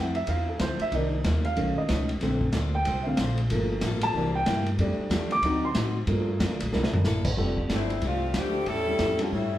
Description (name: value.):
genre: jazz, big band swing.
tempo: 186 BPM.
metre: 4/4.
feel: swing 62% on 8ths.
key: F major.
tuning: A4 = 440 Hz.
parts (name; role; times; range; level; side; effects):
dark baby grand piano; accompaniment; 0.0-9.3 s; D3 to D6; -29 LUFS; right 1 dB; none.
picked plugged-in steel-string acoustic guitar; accompaniment; 0.0-9.5 s; G2 to C5; -35 LUFS; left 3 dB; none.
upright bass; bass; 0.0-9.6 s; F1 to A2; -29 LUFS; equal; none.
vintage drum kit; drums; 0.1-9.2 s; crash cymbal, hi-hat, kick drum, ride cymbal, snare drum, toms; -30 LUFS; equal; none.
clear saxophone section; melody; 7.7-9.6 s; D3 to A4; -27 LUFS; left 2 dB; none.
room: wet large studio reverb, RT60 1.1 s.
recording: band playing live in one room.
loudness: -24 LUFS.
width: side -13 dB against mid.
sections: 0.0-7.4 A section; 7.4-9.6 B section.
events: grand piano solo 0.0-7.4; drum fill 6.7-7.1.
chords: 0.0 Dm9; 0.9 Cm7; 1.6 B9; 2.2 Bbmaj9; 3.5 Gm9; 4.1 C7; 4.8 F69; 5.4 D7b9; 6.1 Gm7; 6.7 C13; 7.4 F69; 8.7 A7.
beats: 0.28 0.60 | 0.92 1.24 1.57 1.89 | 2.21 2.53 2.86 3.18 | 3.50 3.82 4.15 4.47 | 4.79 5.11 5.44 5.76 | 6.08 6.41 6.73 7.05 | 7.38 7.70 8.02 8.35 | 8.67 8.99 9.32.